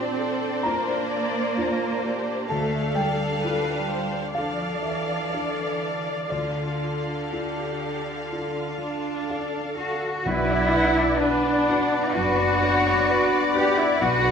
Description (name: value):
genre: cinematic, emotional film score for orchestra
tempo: 63 BPM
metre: 4/4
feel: uneven beats, rubato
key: unclear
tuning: A4 = 440 Hz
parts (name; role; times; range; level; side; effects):
- warm studio violin section; melody; 0.0-14.3 s; D5 to F5; -34 LUFS; left 2 dB; none
- warm studio violin section; second line; 0.0-14.3 s; D4 to F#5; -30 LUFS; left 1 dB; none
- felt-muted upright piano; accompaniment; 0.0-14.3 s; B1 to D6; -30 LUFS; left 2 dB; none
- warm studio viola section; accompaniment; 0.0-14.3 s; D4 to F#5; -31 LUFS; right 1 dB; none
- warm studio cello section; bass; 0.0-14.3 s; D3 to G4; -26 LUFS; right 1 dB; none
- mellow French horn section; sustained chords; 10.2-14.3 s; B3 to D4; -29 LUFS; left 3 dB; none
- bright clarinet; second line; 10.3-14.3 s; D5; -31 LUFS; left 3 dB; none
- mellow concert flute; second line; 10.3-14.3 s; B5; -29 LUFS; left 3 dB; none
- warm oboe; second line; 10.3-14.3 s; F#5; -30 LUFS; right 4 dB; none
- dark studio double bass section; bass; 10.3-14.3 s; F#1 to B1; -30 LUFS; right 2 dB; none
- timpani; percussion; 10.3-11.6 s; B2; -35 LUFS; right 1 dB; none
room: wet scoring stage reverb, RT60 1.6 s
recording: minimal, uncompressed stereo recording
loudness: -22 LUFS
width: side -7 dB against mid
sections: 0.0-10.3 A section; 10.3-14.3 A section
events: none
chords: 0.0 A#add9; 2.5 Dm; 10.3 Bm